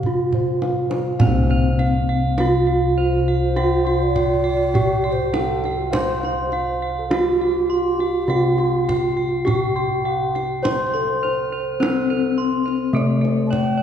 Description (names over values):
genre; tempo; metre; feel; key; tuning
Javanese gamelan; 51 BPM; 4/4; straight; C pelog barang; A4 = 440 Hz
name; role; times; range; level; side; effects
gamelan-type bronze metallophone; melody; 0.0-13.8 s; A3+20c to C5; -21 LUFS; equal; none
gamelan-type bossed gongs; bass; 0.0-13.8 s; C2 to C5; -23 LUFS; left 2 dB; none
kendang; percussion; 0.0-13.8 s; none; -25 LUFS; right 1 dB; none
gamelan-type bossed gongs; arpeggios; 0.3-13.8 s; A4+20c to C6; -28 LUFS; left 2 dB; none
gamelan-type bronze metallophone; arpeggios; 1.2-13.8 s; A4+20c to C6; -27 LUFS; right 2 dB; none
breathy low xiao; second line; 3.4-13.8 s; F4+28c to A5-37c; -27 LUFS; right 3 dB; none
room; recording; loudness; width
wet concert hall reverb, RT60 2.4 s; heard from further back in the room; -17 LUFS; side -8 dB against mid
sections
0.0-1.2 A section; 1.2-13.8 B section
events
drum fill 0.1-1.2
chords
none